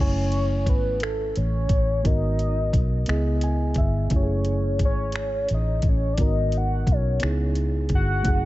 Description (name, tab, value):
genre	slow six-eight R&B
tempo	58 BPM (dotted quarters)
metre	6/8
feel	straight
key	F# dorian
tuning	A4 = 441 Hz
part	warm velvety synth lead	melody	0.0-8.5 s	A4 to F#5	-28 LUFS	left 1 dB	chorus, tremolo, dub echo
part	reed electric piano	accompaniment	0.0-8.5 s	A3 to G#5	-30 LUFS	right 2 dB	dub echo
part	vintage muted fingered electric bass	bass	0.0-8.5 s	F#1 to C#2	-24 LUFS	equal	none
part	smooth R&B drum kit	drums	0.3-8.4 s	finger snaps, hi-hat, kick drum	-24 LUFS	equal	none
room	digital ambience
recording	echo-heavy mix, nothing above 7.9 kHz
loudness	-20 LUFS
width	side -17 dB against mid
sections	0.0-8.5 A section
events	reed electric piano fill 3.1-4.1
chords	0.0 F#m9; 2.0 G#m9; 3.1 C#m9; 4.1 F#m9; 6.2 G#m9; 7.2 C#m9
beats	1.01 | 2.04 3.08 | 4.11 5.15 | 6.18 7.22 | 8.25